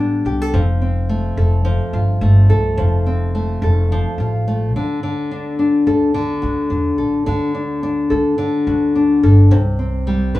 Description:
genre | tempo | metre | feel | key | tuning
acoustic pop | 107 BPM | 4/4 | swing 55% on 16ths | unclear | A4 = 437 Hz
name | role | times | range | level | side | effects
nylon-string guitar | accompaniment | 0.0-10.4 s | C3 to B4 | -18 LUFS | left 2 dB | none
upright bass | bass | 0.0-10.4 s | F1 to E2 | -16 LUFS | equal | none
room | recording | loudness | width
moderate studio reverb, RT60 0.5 s | band playing live in one room, small room ambience | -14 LUFS | side -16 dB against mid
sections
0.0-10.4 A section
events
none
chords
0.0 Gadd9; 0.5 F; 4.7 D; 9.5 C5

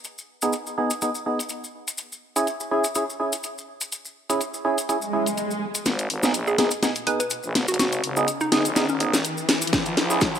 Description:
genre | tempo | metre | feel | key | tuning
bass house | 124 BPM | 4/4 | swing 54% on 16ths | G# minor | A4 = 440 Hz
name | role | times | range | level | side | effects
maracas | percussion | 0.0-10.4 s | none | -31 LUFS | left 2 dB | none
garage drum kit | drums | 0.1-10.3 s | hi-hat, snare drum | -24 LUFS | left 1 dB | low-pass filter on hats, low-pass filter on snare
percussive organ stab | stabs | 0.4-10.2 s | B3 to G#4 | -25 LUFS | right 2 dB | lush chorus, sidechain pumping, tape echo
swell and riser | sound effects | 5.0-10.4 s | none | -31 LUFS | right 1 dB | none
growling FM bass | bass | 5.9-10.4 s | F#1 to D#2 | -28 LUFS | equal | overdrive, sidechain pumping, high-pass filter
hollow square pluck | melody | 6.5-9.0 s | C#4 to B4 | -26 LUFS | left 1 dB | chorus, tape echo
electronic kick drum | drums | 9.7-10.3 s | none | -26 LUFS | equal | none
room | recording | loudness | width
moderate lush hall reverb, RT60 1.9 s, digital ambience | high-pass filter | -22 LUFS | side -8 dB against mid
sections
0.0-5.9 A section; 5.9-10.4 B section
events
swell 5.0-5.9; build-up 5.9-10.4; drum fill 5.9-10.4; riser 5.9-10.4; filter sweep on synth stab 5.9-10.4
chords
0.0 G#m; 2.0 C#m; 5.9 G#m; 9.7 C#m

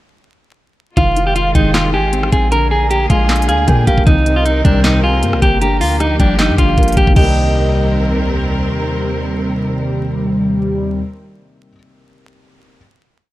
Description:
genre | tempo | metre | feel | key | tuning
hip hop, trap | 155 BPM | 4/4 | half-time | C minor | A4 = 440 Hz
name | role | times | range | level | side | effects
clean electric guitar | melody | 1.0-8.3 s | D4 to Bb4 | -18 LUFS | equal | low-pass filter, tape echo
soft octave-layered synth lead | second line | 1.0-8.3 s | Eb5 to Bb5 | -22 LUFS | right 4 dB | chorus
felt-muted upright piano | accompaniment | 1.0-12.8 s | C3 to C4 | -21 LUFS | left 3 dB | low-pass filter
warm symphonic string section | sustained chords | 1.0-11.0 s | D3 to Bb4 | -24 LUFS | equal | none
mellow synth brass | stabs | 1.0-11.0 s | C2 to G3 | -18 LUFS | equal | chorus
warm 808-style bass | bass | 1.0-8.7 s | F1 to Bb2 | -16 LUFS | equal | none
trap drum kit | drums | 1.0-7.3 s | crash cymbal, handclaps, hi-hat, kick drum, rim click, snare drum | -16 LUFS | equal | none
room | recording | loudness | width
light reverb | vinyl crackle | -12 LUFS | side -16 dB against mid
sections
1.0-7.2 hook; 7.2-10.3 final chord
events
none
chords
1.0 Fm7; 2.5 Bb7; 4.1 Cm7; 5.6 Gm7; 7.2 Cm7

